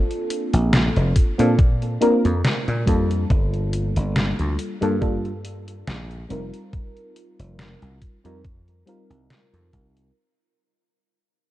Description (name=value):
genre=vaporwave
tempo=70 BPM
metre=4/4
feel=swing 54% on 16ths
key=unclear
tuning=A4 = 440 Hz
part: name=mellow FM electric piano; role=accompaniment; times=0.0-10.1 s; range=G3 to Bb4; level=-23 LUFS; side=equal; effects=analog chorus, vintage 12-bit sampler grit, analog delay
part: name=detuned 8-bit digital drum machine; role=drums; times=0.1-10.1 s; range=hi-hat, snare drum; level=-24 LUFS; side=equal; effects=vintage 12-bit sampler grit, small room ambience, gated reverb
part: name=dry thumbed slap bass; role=bass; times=0.5-10.1 s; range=F1 to Bb2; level=-23 LUFS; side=equal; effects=low-pass filter
part: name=electronic kick drum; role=drums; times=1.2-9.9 s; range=none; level=-19 LUFS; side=equal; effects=vintage 12-bit sampler grit, small room ambience
room=little or no reverb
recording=none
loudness=-18 LUFS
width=side -15 dB against mid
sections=0.0-10.2 A section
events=fade-out 0.0-10.2; filter sweep on slap bass 0.0-10.2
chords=0.0 Bbmaj9; 3.3 Gm9; 6.3 F9sus4